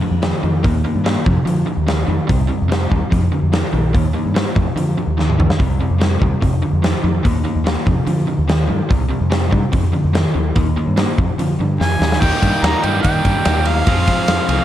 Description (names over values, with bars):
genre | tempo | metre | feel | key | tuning
classic rock | 145 BPM | 4/4 | straight | F minor | A4 = 441 Hz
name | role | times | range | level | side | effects
crunchy overdriven guitar | riff | 0.0-14.6 s | F2 to F4 | -22 LUFS | left 7 dB | none
crunchy overdriven guitar | riff | 0.0-14.6 s | F2 to Ab4 | -23 LUFS | right 7 dB | none
growling fingered electric bass | bass | 0.1-14.6 s | Bb1 to F3 | -19 LUFS | equal | overdrive
big rock drum kit | drums | 0.2-14.6 s | crash cymbal, hi-hat, kick drum, ride cymbal, snare drum, toms | -19 LUFS | equal | none
clear harmonica | melody | 11.8-14.6 s | F5 to Bb5 | -20 LUFS | equal | none
room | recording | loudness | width
light reverb | cassette tape | -14 LUFS | side -12 dB against mid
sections
0.0-12.2 A section; 12.2-14.6 B section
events
drum fill 5.2-5.6, 11.8-12.2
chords
0.0 F5; 0.6 Eb; 1.3 F5; 2.3 C5; 3.1 F5; 3.9 Eb; 4.6 F5; 5.6 Cm; 6.4 F5; 7.2 Eb5; 7.9 F5; 8.9 C5; 9.7 F5; 10.6 Eb; 11.2 Fm; 12.2 Eb; 13.9 Fm